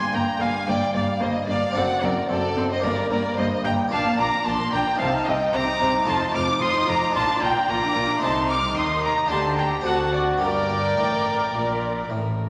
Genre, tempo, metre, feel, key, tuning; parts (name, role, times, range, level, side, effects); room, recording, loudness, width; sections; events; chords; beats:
classical, baroque-style concerto movement with solo episodes; 111 BPM; 4/4; straight; G minor from 3.9 s; A4 = 440 Hz
rich violin; melody; 0.0-12.1 s; A4 to D6; -30 LUFS; equal
warm chamber violin section; melody; 0.0-12.1 s; D5 to F6; -30 LUFS; equal
dark chamber violin section; second line; 0.0-12.1 s; A4 to D6; -29 LUFS; equal
harpsichord; accompaniment; 0.0-12.5 s; F2 to A4; -31 LUFS; equal
rich chamber viola section; accompaniment; 0.1-12.4 s; Bb3 to Bb4; -30 LUFS; equal
rich chamber double bass section; bass; 0.1-12.5 s; F1 to Eb2; -34 LUFS; equal
warm studio cello section; bass; 0.1-12.5 s; F2 to Eb3; -36 LUFS; equal
wet concert hall reverb, RT60 1.9 s; -22 LUFS; mono
0.0-12.5 A section
0.0 Gm; 1.8 D7/F#; 2.8 Gm; 3.9 Bb; 5.0 Cm; 6.1 F7; 7.1 Bb; 8.2 Adim/C; 9.3 Gm/D; 9.9 D7; 10.4 Gm
0.14 0.68 1.22 | 1.76 2.30 2.84 3.38 | 3.92 4.46 4.99 5.53 | 6.07 6.61 7.15 7.68 | 8.22 8.77 9.31 9.86 | 10.42 10.98 11.54 12.10